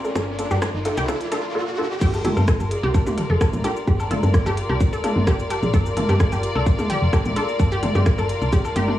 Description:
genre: minimal techno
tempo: 129 BPM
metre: 4/4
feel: straight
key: G minor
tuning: A4 = 436 Hz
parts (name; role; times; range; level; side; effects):
- resonant blip pluck; riff; 0.0-8.8 s; G4 to A4; -28 LUFS; right 1 dB; chorus, sidechain pumping, analog delay
- garage drum kit; drums; 0.0-8.9 s; cabasa, crash cymbal, hi-hat, rim click; -31 LUFS; equal; high-pass filter on perc, cassette tape, high-pass filter on hats, high-pass filter on snare, high-pass filter on cymbals, high-pass filter on room
- riser; sound effects; 0.0-2.0 s; none; -29 LUFS; right 1 dB; none
- bubbling stepped-filter texture; texture; 0.0-1.5 s; D5; -39 LUFS; left 2 dB; none
- clear symphonic string section; texture; 0.0-9.0 s; F4 to D5; -28 LUFS; left 2 dB; sidechain pumping
- woody FM bass; bass; 0.2-9.0 s; F1 to G2; -22 LUFS; equal; sidechain pumping
- electronic kick drum; drums; 0.2-8.6 s; none; -20 LUFS; equal; high-pass filter on kick, cassette tape, high-pass filter on room
- filtered dub chord stab; stabs; 0.4-7.4 s; Bb3 to A4; -29 LUFS; equal; phaser, ensemble chorus, analog delay
- electronic cowbell, woodblock and toms; percussion; 2.1-9.0 s; none; -26 LUFS; left 1 dB; cassette tape, analog delay
room: light reverb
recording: home recording on cassette, small room reverb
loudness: -18 LUFS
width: side -13 dB against mid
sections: 0.0-2.0 A section; 2.0-9.0 B section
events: build-up 0.0-2.0; riser 0.0-2.0; filter sweep on synth pluck 0.0-2.0; drop 2.0-9.0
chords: 0.0 Gm7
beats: | 0.15 0.62 1.08 1.55 | 2.02 2.48 2.94 3.41 | 3.88 4.34 4.80 5.27 | 5.74 6.20 6.67 7.13 | 7.60 8.06 8.53

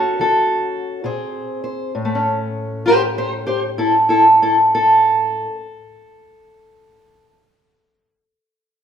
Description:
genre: acoustic country blues, solo or duo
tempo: 65 BPM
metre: 4/4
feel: swing 65% on 8ths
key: unclear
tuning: A4 = 440 Hz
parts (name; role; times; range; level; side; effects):
- fingerpicked steel-string acoustic guitar; solo; 0.0-7.3 s; A2 to C5; -15 LUFS; equal; none
room: wet recital hall reverb, RT60 1.5 s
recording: minimal, uncompressed stereo recording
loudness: -14 LUFS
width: side -8 dB against mid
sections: 0.0-1.9 A section; 1.9-5.6 B section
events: slowing down 0.0-1.9; stop 0.0-1.0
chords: 0.0 A; 1.0 Bbsus2; 1.9 A7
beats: 0.18 1.04 | 1.94 2.86 3.78 4.70

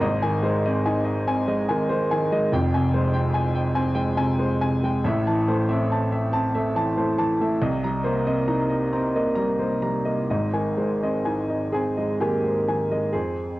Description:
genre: neoclassical minimalist piano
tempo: 62-74 BPM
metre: 3/4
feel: rubato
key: unclear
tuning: A4 = 441 Hz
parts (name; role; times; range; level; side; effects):
- warm baby grand piano; solo; 0.0-13.6 s; F1 to Bb5; -21 LUFS; equal; none
room: light reverb, small room reverb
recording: home recording on cassette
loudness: -21 LUFS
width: side -18 dB against mid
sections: 0.0-13.1 A section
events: none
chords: 0.0 Ab; 2.5 Fmadd9; 5.0 Am; 7.6 Cm7; 10.3 Ab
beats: | 0.03 0.84 1.68 | 2.51 3.33 4.18 | 5.03 5.88 6.74 | 7.60 8.46 9.34 | 10.27 11.23 12.18 | 13.12

